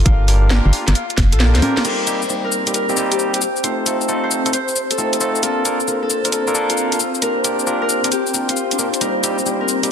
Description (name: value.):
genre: UK garage, two-step garage.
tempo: 134 BPM.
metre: 4/4.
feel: swing 66% on 16ths.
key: C dorian.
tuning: A4 = 440 Hz.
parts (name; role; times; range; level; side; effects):
Celtic harp; melody; 0.0-9.9 s; D4 to C5; -23 LUFS; left 3 dB; tape echo.
soft string machine; sustained chords; 0.0-9.9 s; C4 to F5; -25 LUFS; equal; phaser, ensemble chorus, sidechain pumping.
organ-like FM bass; bass; 0.0-1.6 s; F1 to D2; -14 LUFS; equal; none.
barky tine electric piano; stabs; 0.1-9.9 s; G3 to Bb4; -22 LUFS; right 1 dB; overdrive, low-pass filter.
electronic kick drum; drums; 0.1-1.3 s; none; -15 LUFS; equal; none.
garage drum kit; drums; 0.1-9.9 s; cabasa, congas, crash cymbal, hi-hat, rim click, snare drum; -20 LUFS; left 1 dB; none.
room: moderate digital room reverb, RT60 1.2 s.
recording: dense, heavily limited modern master, lossy compression artefacts.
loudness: -15 LUFS.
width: side -8 dB against mid.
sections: 0.0-1.8 A section; 1.8-9.9 B section.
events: drum fill 1.2-1.8; kick drops out 1.4-1.8; filter sweep on string machine 1.8-9.9.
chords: 0.0 Gm7; 1.8 Cm7; 3.4 F7; 5.4 Bbmaj7; 7.0 Gm7; 9.0 Cm7.